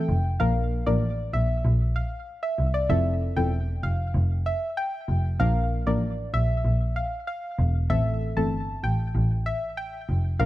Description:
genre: dancehall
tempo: 96 BPM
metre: 4/4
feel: straight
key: A phrygian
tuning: A4 = 440 Hz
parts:
  - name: soft round pluck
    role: melody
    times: 0.0-10.5 s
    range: D5 to A5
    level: -30 LUFS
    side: equal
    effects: chorus, tape echo
  - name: deep mellow chord stab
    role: accompaniment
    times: 0.0-10.5 s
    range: E3 to Bb4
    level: -28 LUFS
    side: left 2 dB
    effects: chorus
  - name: clear double bass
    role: bass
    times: 0.1-10.5 s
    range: E1 to C2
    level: -24 LUFS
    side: equal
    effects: none
room: small room ambience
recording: none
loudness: -23 LUFS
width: side -16 dB against mid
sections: 0.0-10.5 A section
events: none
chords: 0.4 Bb; 2.9 Fmaj7; 5.4 Bb; 7.9 Am

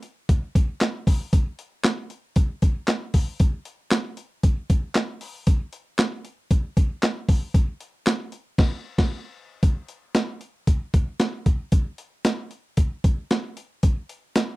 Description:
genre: funk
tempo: 116 BPM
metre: 4/4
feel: straight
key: none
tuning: none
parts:
  - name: breakbeat sampler-style drum kit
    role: drums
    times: 0.0-14.5 s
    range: crash cymbal, handclaps, hi-hat, kick drum, snare drum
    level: -20 LUFS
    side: equal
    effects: overdrive
room: light reverb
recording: dry, close 1970s-style studio recording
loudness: -22 LUFS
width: side -21 dB against mid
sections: 0.0-9.6 A section; 9.6-14.6 B section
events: band accent 8.6-9.6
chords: none

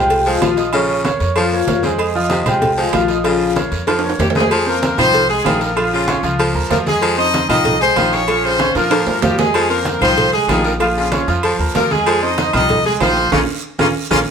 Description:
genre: latin, salsa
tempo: 191 BPM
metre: 4/4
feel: straight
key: F minor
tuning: A4 = 440 Hz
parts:
  - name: vibraphone with medium mallets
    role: melody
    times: 0.0-3.5 s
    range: F4 to Eb6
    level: -17 LUFS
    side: left 2 dB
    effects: none
  - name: raspy baritone saxophone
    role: second line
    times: 0.0-14.2 s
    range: C3 to F3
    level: -22 LUFS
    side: left 2 dB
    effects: none
  - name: bright concert grand piano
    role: accompaniment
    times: 0.0-14.2 s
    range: F3 to Db6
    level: -20 LUFS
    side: right 2 dB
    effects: none
  - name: upright bass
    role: bass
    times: 0.0-14.2 s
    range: Bb1 to Bb2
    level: -24 LUFS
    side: equal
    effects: none
  - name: agogo bells and timbales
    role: percussion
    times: 0.1-14.2 s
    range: none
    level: -23 LUFS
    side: right 4 dB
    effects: none
  - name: congas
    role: percussion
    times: 0.1-14.2 s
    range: none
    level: -24 LUFS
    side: equal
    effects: none
  - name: cowbell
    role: percussion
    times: 0.1-14.2 s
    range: none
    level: -24 LUFS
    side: right 1 dB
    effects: none
  - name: guiro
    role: percussion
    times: 0.1-14.2 s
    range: none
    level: -32 LUFS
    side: right 6 dB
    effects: none
  - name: brilliant horn section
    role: melody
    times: 4.2-14.2 s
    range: F3 to Eb5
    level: -17 LUFS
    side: left 2 dB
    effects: none
room: moderate studio reverb, RT60 0.9 s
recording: band playing live in one room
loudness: -13 LUFS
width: side -7 dB against mid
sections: 0.0-4.5 A section; 4.5-14.3 B section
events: drum fill 3.9-4.5, 8.6-9.5, 13.3-14.3; band accent 13.3-14.3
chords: 0.0 Fm7; 0.7 Bbm; 2.0 Fm7; 3.3 Bbm; 4.5 Fm7; 5.8 Bbm; 7.0 Fm7; 8.3 Bbm; 9.5 Fm7; 10.8 Bbm; 12.1 Fm7; 13.3 Bbm

